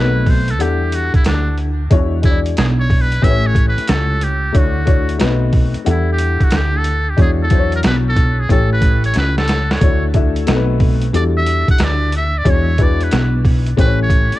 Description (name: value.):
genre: hip hop, jazz-hop.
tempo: 91 BPM.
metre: 4/4.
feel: swing 65% on 16ths.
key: E dorian.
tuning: A4 = 440 Hz.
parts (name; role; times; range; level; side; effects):
trumpet with metal mute; melody; 0.0-14.4 s; D4 to F#5; -21 LUFS; right 1 dB; cassette tape, tape echo.
dark upright piano; accompaniment; 0.0-14.4 s; F#3 to F#5; -22 LUFS; left 8 dB; cassette tape.
woody fretless electric bass; bass; 0.0-14.3 s; A1 to E2; -16 LUFS; right 1 dB; ensemble chorus.
boom bap sampler-style drum kit; drums; 0.3-14.4 s; hi-hat, kick drum, snare drum; -15 LUFS; right 1 dB; none.
room: studio reverb.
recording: home recording on cassette.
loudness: -13 LUFS.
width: side -16 dB against mid.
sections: 0.0-14.4 A section.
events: muted trumpet solo 0.0-14.4; drum fill 9.2-9.8.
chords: 0.0 B7b9; 0.6 Em11; 1.9 E13; 3.2 A7; 4.5 Dmaj9; 5.2 B7b9; 5.9 Em11; 7.2 E13; 8.5 A7; 9.8 Dmaj9; 10.5 B7b9; 11.1 Em11; 12.5 E13; 13.8 A7.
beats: 0.59 1.25 | 1.91 2.57 3.23 3.89 | 4.54 5.21 5.86 6.52 | 7.18 7.84 8.50 9.16 | 9.82 10.48 11.14 11.80 | 12.46 13.12 13.78.